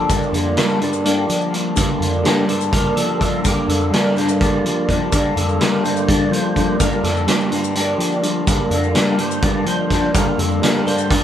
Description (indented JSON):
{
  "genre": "psychedelic rock",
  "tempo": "251 BPM (eighths)",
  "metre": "7/8",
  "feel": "straight",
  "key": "G minor",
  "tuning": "A4 = 440 Hz",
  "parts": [
    { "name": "percussive tonewheel organ", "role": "sustained chords", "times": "0.0-11.2 s", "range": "D3 to D5", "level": "-24 LUFS", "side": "right 1 dB", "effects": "slow rotary speaker, overdrive" },
    { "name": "electric guitar through a small old amp", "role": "riff", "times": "0.0-11.2 s", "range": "G2 to D4", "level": "-20 LUFS", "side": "left 1 dB", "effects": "phaser" },
    { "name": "fuzz picked electric bass", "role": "bass", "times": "0.0-11.2 s", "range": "F2 to G3", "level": "-22 LUFS", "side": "equal", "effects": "overdrive" },
    { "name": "vintage drum kit", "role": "drums", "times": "0.1-11.2 s", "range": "hi-hat, kick drum, snare drum", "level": "-20 LUFS", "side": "equal", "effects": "none" },
    { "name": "maracas", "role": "percussion", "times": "0.1-11.1 s", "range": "none", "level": "-32 LUFS", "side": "left 4 dB", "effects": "none" }
  ],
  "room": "moderate studio reverb, RT60 0.6 s",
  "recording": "band playing live in one room",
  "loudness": "-15 LUFS",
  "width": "side -10 dB against mid",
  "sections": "0.0-11.2 A section",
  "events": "tonewheel organ solo 0.0-11.2",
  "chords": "0.0 Gm",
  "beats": "| 0.10 0.34 0.57 0.81 1.05 1.29 1.53 | 1.77 2.01 2.25 2.49 2.73 2.97 3.21 | 3.45 3.69 3.93 4.17 4.41 4.65 4.88 | 5.12 5.36 5.60 5.84 6.08 6.32 6.56 | 6.80 7.04 7.28 7.52 7.75 7.99 8.23 | 8.47 8.71 8.95 9.19 9.43 9.67 9.91 | 10.14 10.38 10.62 10.86 11.10"
}